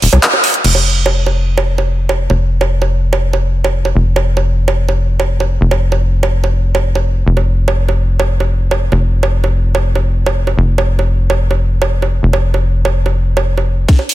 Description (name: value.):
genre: psychedelic trance.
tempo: 145 BPM.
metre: 4/4.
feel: straight.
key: unclear.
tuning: A4 = 440 Hz.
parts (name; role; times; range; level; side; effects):
tight sequencer bass; bass; 0.0-13.9 s; Eb1 to C2; -13 LUFS; left 1 dB; none.
drum and bass drum kit; drums; 0.0-14.1 s; bongos, crash cymbal, handclaps, hi-hat, ride cymbal, snare drum; -16 LUFS; right 4 dB; overdrive.
electronic kick drum; drums; 13.9-14.0 s; none; -8 LUFS; equal; none.
room: little or no reverb.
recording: none.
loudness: -11 LUFS.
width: side -15 dB against mid.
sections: 0.6-13.9 A section.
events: band accent 0.2; drum fill 13.9.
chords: none.